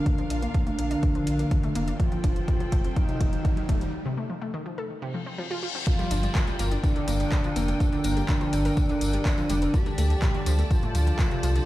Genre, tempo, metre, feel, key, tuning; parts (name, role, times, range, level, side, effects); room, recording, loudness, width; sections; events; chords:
melodic techno; 124 BPM; 4/4; straight; G minor; A4 = 440 Hz
expressive synth lead; melody; 0.0-11.7 s; D4 to G4; -31 LUFS; right 1 dB; chorus, sidechain pumping, tape echo
airy dreamy lead; second line; 0.0-11.7 s; D3 to G3; -34 LUFS; equal; chorus, sidechain pumping, tape echo
muted studio string section; sustained chords; 0.0-11.7 s; D4 to A5; -37 LUFS; equal; sidechain pumping
analog pluck; arpeggios; 0.0-11.6 s; A2 to Bb5; -34 LUFS; left 1 dB; chorus, cassette tape, sidechain pumping, tape echo
riser, reverse cymbal and downlifter; sound effects; 1.1-9.7 s; -38 LUFS; left 1 dB
deep house drum kit; drums; 0.1-11.7 s; handclaps, hi-hat; -37 LUFS; equal; overdrive, sidechain pumping on hats
electronic kick drum; drums; 0.1-11.3 s; -24 LUFS; equal; overdrive
round analog bass; bass; 0.3-11.6 s; Eb1 to D2; -26 LUFS; equal; sidechain pumping
tambourine; percussion; 5.9-11.7 s; -41 LUFS; left 3 dB
light reverb, digital ambience; played on a big sound system in a bare room, stone room reverb; -23 LUFS; side -16 dB against mid
0.0-5.9 A section; 5.9-11.7 B section
build-up 0.0-5.9; drum fill 0.0-3.9; filter sweep on synth arpeggio sound 0.0-5.9; filter sweep on analog synth lead 0.0-5.9; filter sweep on digital synth lead 0.0-5.9; break 3.9-5.9; reverse cymbal 5.1-5.9; drop 5.9-11.7
0.0 Bb; 2.0 Fadd9; 5.9 Gm7; 9.7 Dsus4